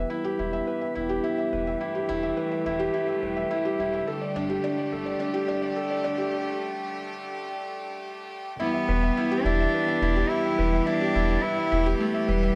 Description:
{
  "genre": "piano and strings electronica",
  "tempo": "106 BPM",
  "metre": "4/4",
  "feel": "straight",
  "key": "E minor",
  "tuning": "A4 = 437 Hz",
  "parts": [
    { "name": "bright chamber string section", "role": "sustained chords", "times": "0.0-12.6 s", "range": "D3 to G4", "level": "-35 LUFS", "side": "equal", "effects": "low-pass filter" },
    { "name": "felt-muted upright piano", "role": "riff", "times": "0.0-12.6 s", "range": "D4 to E5", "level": "-30 LUFS", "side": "equal", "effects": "delay" },
    { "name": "warm sub bass", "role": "bass", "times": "0.0-12.5 s", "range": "E1 to G1", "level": "-31 LUFS", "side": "equal", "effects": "none" },
    { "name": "warm cello", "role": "melody", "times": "8.6-12.6 s", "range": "G3 to E4", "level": "-28 LUFS", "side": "equal", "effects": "none" }
  ],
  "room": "moderate echo chamber reverb, RT60 1.8 s, small room ambience",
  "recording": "high-pass filter",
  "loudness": "-26 LUFS",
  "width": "mono",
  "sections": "0.0-8.6 A section; 8.6-12.6 B section",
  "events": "build-up 0.0-8.6; filter sweep on string section 0.0-8.6; filter sweep 0.0-8.6; break 6.3-8.6; drop 8.6-12.6",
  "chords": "0.0 Em; 4.1 Gsus2; 8.6 Em"
}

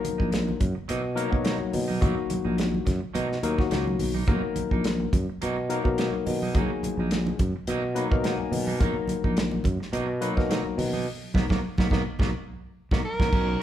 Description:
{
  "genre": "electric jazz fusion",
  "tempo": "106 BPM",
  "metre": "4/4",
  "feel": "swing 55% on 16ths",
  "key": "B major",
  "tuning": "A4 = 440 Hz",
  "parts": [
    { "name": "barky tine electric piano", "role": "accompaniment", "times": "0.0-13.6 s", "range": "F#3 to G#5", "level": "-30 LUFS", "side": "left 6 dB", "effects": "none" },
    { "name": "clean electric guitar", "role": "stabs", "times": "0.0-13.6 s", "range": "F#3 to A#4", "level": "-36 LUFS", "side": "right 5 dB", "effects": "none" },
    { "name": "damped 70s drum kit", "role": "drums", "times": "0.0-13.5 s", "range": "crash cymbal, hi-hat, kick drum, snare drum", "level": "-27 LUFS", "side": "right 1 dB", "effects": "none" },
    { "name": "congas", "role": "percussion", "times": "0.0-13.3 s", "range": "none", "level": "-34 LUFS", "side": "right 3 dB", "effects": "none" },
    { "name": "sustaining fretless electric bass", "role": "bass", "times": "0.1-13.5 s", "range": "A#1 to B2", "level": "-28 LUFS", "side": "equal", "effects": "none" },
    { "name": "breathy soprano saxophone", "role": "melody", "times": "13.1-13.6 s", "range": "A#4", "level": "-28 LUFS", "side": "right 3 dB", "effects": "none" }
  ],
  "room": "moderate large studio reverb, RT60 1.0 s",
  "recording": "band playing live in one room",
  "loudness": "-24 LUFS",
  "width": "side -11 dB against mid",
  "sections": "0.0-13.3 A section",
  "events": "tine electric piano fill 7.7-8.8, 12.2-13.3; band accent 11.1-13.3",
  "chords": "0.0 Bmaj7"
}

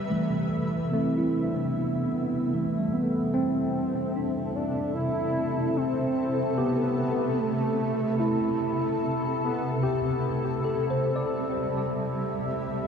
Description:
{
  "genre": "ambient",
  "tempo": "74 BPM",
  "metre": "3/4",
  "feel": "straight",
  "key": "unclear",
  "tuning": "A4 = 440 Hz",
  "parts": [
    { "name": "warm velvety synth lead", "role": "melody", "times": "0.0-9.8 s", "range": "G3 to E4", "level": "-30 LUFS", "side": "equal", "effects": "chorus, ping-pong delay" },
    { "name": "shimmering ambient pad", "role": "sustained chords", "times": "0.0-12.9 s", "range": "C3 to E5", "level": "-30 LUFS", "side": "equal", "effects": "chorus, built-in reverb" },
    { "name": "tine electric piano", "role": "arpeggios", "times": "0.0-12.9 s", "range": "E3 to D5", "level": "-30 LUFS", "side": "equal", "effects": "wide subtle chorus, ping-pong delay" },
    { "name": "overtone-sweeping drone", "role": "drone", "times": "0.5-12.9 s", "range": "A3 to E4", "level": "-35 LUFS", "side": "equal", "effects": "chorus, built-in reverb, phaser" }
  ],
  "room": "wet huge ambient reverb, RT60 8.8 s",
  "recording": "cassette tape",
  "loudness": "-24 LUFS",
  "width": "side -6 dB against mid",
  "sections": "0.1-12.9 A section",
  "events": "none",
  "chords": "0.0 Cmaj13"
}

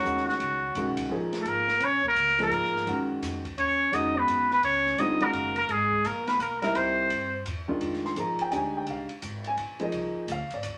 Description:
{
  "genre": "modal jazz",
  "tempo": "170 BPM",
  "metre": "3/4",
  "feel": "swing 64% on 8ths",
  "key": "G# dorian",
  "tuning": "A4 = 440 Hz",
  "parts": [
    { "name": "trumpet with straight mute", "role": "melody", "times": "0.0-7.5 s", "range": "F#4 to D#5", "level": "-27 LUFS", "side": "equal", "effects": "none" },
    { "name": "mellow trombone", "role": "second line", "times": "0.0-7.4 s", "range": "F#3 to D#4", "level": "-37 LUFS", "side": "equal", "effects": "none" },
    { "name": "warm upright piano", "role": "accompaniment", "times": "0.0-10.8 s", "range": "D3 to C6", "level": "-32 LUFS", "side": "equal", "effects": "none" },
    { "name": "upright bass", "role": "bass", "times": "0.0-10.8 s", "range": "F#1 to G#2", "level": "-43 LUFS", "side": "equal", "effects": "none" },
    { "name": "open jazz drum kit", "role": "drums", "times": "0.1-10.7 s", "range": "hi-hat, kick drum, ride cymbal, snare drum", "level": "-43 LUFS", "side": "equal", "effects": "none" }
  ],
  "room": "wet studio reverb, RT60 0.6 s",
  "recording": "none",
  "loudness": "-27 LUFS",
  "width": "mono",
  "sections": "0.0-7.8 A section; 7.8-10.8 B section",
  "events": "none",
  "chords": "0.0 G#9sus4; 6.8 C7; 7.8 Fm11"
}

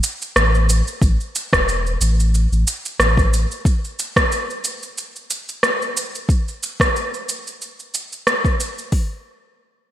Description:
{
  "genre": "organic downtempo",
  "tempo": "91 BPM",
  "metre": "4/4",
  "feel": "swing 55% on 16ths",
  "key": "unclear",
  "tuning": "A4 = 438 Hz",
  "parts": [
    { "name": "electronic cabasa and rim click", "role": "drums", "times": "0.0-8.9 s", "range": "none", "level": "-20 LUFS", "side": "right 1 dB", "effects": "gated reverb" },
    { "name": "warm sub bass", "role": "bass", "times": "0.4-3.5 s", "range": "E1 to A1", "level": "-17 LUFS", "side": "equal", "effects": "sidechain pumping" },
    { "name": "afro-pop drum kit", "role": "drums", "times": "1.0-9.1 s", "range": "hi-hat, kick drum", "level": "-18 LUFS", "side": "equal", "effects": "none" }
  ],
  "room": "light reverb",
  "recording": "bright 1980s-style digital production",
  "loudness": "-17 LUFS",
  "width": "side -12 dB against mid",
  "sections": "0.0-8.9 A section",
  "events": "none",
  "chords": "none"
}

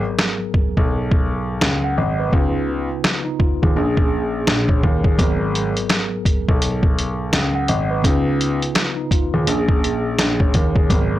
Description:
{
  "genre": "hip hop, boom-bap hip-hop",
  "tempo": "84 BPM",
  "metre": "4/4",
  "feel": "swing 62% on 16ths",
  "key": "G# dorian",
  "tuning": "A4 = 442 Hz",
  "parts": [
    { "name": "mellow tine electric piano", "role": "accompaniment", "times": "0.0-11.2 s", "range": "G#2 to F#5", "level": "-23 LUFS", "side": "right 1 dB", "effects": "medium stereo tremolo, cassette tape, high-pass filter, low-pass filter" },
    { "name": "trip hop sampler-style drum kit", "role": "drums", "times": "0.2-11.1 s", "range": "hi-hat, kick drum, snare drum", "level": "-18 LUFS", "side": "equal", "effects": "none" },
    { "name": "dark grand piano", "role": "bass", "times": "0.8-11.2 s", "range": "G#1 to D#2", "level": "-20 LUFS", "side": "left 1 dB", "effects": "none" }
  ],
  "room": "light reverb",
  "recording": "blown-out, overdriven recording, overdrive",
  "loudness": "-16 LUFS",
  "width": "side -14 dB against mid",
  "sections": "0.0-11.2 A section",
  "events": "break 0.0-5.2",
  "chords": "0.0 G#m9; 2.3 C#9; 3.8 A#m7; 5.2 G#m9; 8.0 C#9; 9.5 A#m7"
}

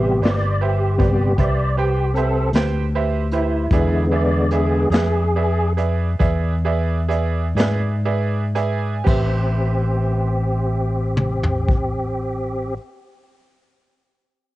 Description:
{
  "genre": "slow blues",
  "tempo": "38-52 BPM (dotted quarters)",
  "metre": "12/8",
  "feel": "straight",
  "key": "A minor",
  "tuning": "A4 = 440 Hz",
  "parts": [
    { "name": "bright upright piano", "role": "accompaniment", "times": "0.0-12.8 s", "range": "G4 to G#5", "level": "-25 LUFS", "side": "right 6 dB", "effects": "cassette tape" },
    { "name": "tonewheel organ", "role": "sustained chords", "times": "0.0-12.7 s", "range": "C3 to D5", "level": "-22 LUFS", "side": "equal", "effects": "slow rotary speaker, chorus vibrato, cassette tape" },
    { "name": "fingered electric bass", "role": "bass", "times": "0.0-12.8 s", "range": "G1 to G#2", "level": "-20 LUFS", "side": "left 1 dB", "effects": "none" },
    { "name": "vintage brush drum kit", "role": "drums", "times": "0.2-11.9 s", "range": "crash cymbal, hi-hat, kick drum, snare drum, toms", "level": "-20 LUFS", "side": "left 1 dB", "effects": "cassette tape" }
  ],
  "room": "small room ambience",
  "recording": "home recording on cassette, nothing above 10.3 kHz",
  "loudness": "-17 LUFS",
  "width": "side -16 dB against mid",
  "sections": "0.0-9.1 A section; 9.1-14.6 B section",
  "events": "tonewheel organ solo 0.0-9.1; slowing down 2.1-9.1; upright piano fill 7.6-9.1",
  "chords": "0.0 Am7; 3.7 E7; 9.1 Am7"
}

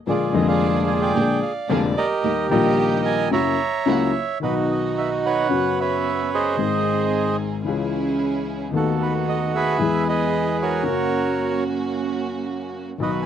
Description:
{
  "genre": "tango",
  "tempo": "111 BPM",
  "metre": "4/4",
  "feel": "rubato",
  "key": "B major from 4.4 s",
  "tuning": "A4 = 440 Hz",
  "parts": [
    { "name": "bandoneon", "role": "melody", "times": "0.1-13.3 s", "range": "D#4 to A#5", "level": "-22 LUFS", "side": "right 5 dB", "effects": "none" },
    { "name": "warm upright piano", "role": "accompaniment", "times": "0.1-13.3 s", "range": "E#1 to G#4", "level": "-22 LUFS", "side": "left 6 dB", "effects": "none" },
    { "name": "dark chamber string section", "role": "stabs", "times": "0.1-13.3 s", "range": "D#3 to A4", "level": "-28 LUFS", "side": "right 7 dB", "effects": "none" }
  ],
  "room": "light reverb",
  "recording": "dry, close 1970s-style studio recording",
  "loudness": "-19 LUFS",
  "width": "side -9 dB against mid",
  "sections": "0.0-4.4 A section; 4.4-13.3 B section",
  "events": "none",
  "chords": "0.1 A#7; 2.2 D#; 3.3 F#7; 4.4 B; 5.5 F#sus4; 6.6 G#; 7.7 C#m; 8.7 B7/D#; 9.8 E; 10.9 F#"
}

